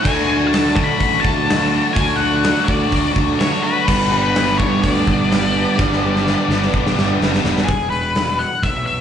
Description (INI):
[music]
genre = classic rock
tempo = 126 BPM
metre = 4/4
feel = straight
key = unclear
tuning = A4 = 441 Hz
[part]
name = octave-fuzz lead guitar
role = melody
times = 0.0-9.0 s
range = G#4 to B5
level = -21 LUFS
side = left 2 dB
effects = distortion, slapback echo, plate reverb
[part]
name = picked steel-string acoustic guitar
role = accompaniment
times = 0.0-7.7 s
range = G2 to G4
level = -28 LUFS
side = left 2 dB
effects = none
[part]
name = tonewheel organ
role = sustained chords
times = 0.0-7.6 s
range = A3 to D5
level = -29 LUFS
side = equal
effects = none
[part]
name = overdriven electric guitar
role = riff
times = 0.0-7.7 s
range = G2 to G4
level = -23 LUFS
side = left 13 dB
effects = slapback echo
[part]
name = overdriven electric guitar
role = riff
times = 0.0-7.7 s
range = G2 to D4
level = -22 LUFS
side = right 10 dB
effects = slapback echo
[part]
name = fuzz fingered electric bass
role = bass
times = 0.0-9.0 s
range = E1 to D3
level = -22 LUFS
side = equal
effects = overdrive
[part]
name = big rock drum kit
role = drums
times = 0.1-9.0 s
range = crash cymbal, hi-hat, kick drum, snare drum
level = -20 LUFS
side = equal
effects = none
[sound]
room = light reverb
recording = live gig heard through the venue's PA, club reverb, nothing above 10.4 kHz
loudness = -14 LUFS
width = side -8 dB against mid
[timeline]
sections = 0.0-7.7 A section; 7.7-9.0 B section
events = drum fill 5.8-7.7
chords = 0.0 D; 3.9 G; 7.7 E5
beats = | 0.05 0.53 1.00 1.48 | 1.96 2.44 2.91 3.39 | 3.87 4.34 4.82 5.30 | 5.77 6.25 6.73 7.20 | 7.68 8.16 8.64